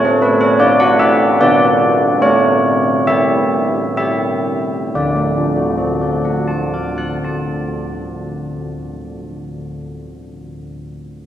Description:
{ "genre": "classical, tune for church bells", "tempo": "59-80 BPM", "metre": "3/4", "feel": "straight", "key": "D major", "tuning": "A4 = 440 Hz", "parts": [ { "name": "old church bells", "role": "solo", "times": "0.0-9.4 s", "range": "D3 to F#6", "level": "-14 LUFS", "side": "equal", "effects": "none" } ], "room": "wet scoring stage reverb, RT60 1.8 s", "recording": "heard from further back in the room", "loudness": "-13 LUFS", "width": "side -10 dB against mid", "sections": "0.0-5.0 A section; 5.0-8.0 B section", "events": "slowing down 0.0-5.0", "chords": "0.0 A5; 1.4 G/B; 2.2 A7; 5.0 D", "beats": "0.62 1.40 | 2.21 3.06 3.97 | 4.95 5.96 6.96" }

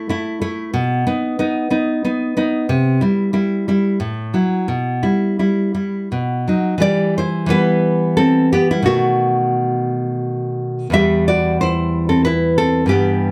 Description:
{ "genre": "romantic piece for solo classical guitar", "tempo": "83-94 BPM", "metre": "3/4", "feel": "rubato", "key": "E minor", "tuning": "A4 = 441 Hz", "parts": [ { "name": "nylon-string guitar", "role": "solo", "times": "0.0-13.3 s", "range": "E2 to E5", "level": "-18 LUFS", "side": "equal", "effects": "none" } ], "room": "wet small room reverb, RT60 0.5 s", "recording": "none", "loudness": "-18 LUFS", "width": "mono", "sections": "0.0-6.8 A section; 6.8-13.3 B section", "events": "none", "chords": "0.0 A5; 0.7 B; 2.7 C; 4.0 F#m7/A; 4.7 Em/B; 6.1 B; 6.8 Em; 8.9 B7; 10.9 Em", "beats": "0.08 | 0.72 1.37 2.03 | 2.69 3.33 4.00 | 4.70 5.42 6.13 | 6.83 7.51 8.20 | 8.89 9.57 10.25 | 10.93 11.60 12.26 | 12.91" }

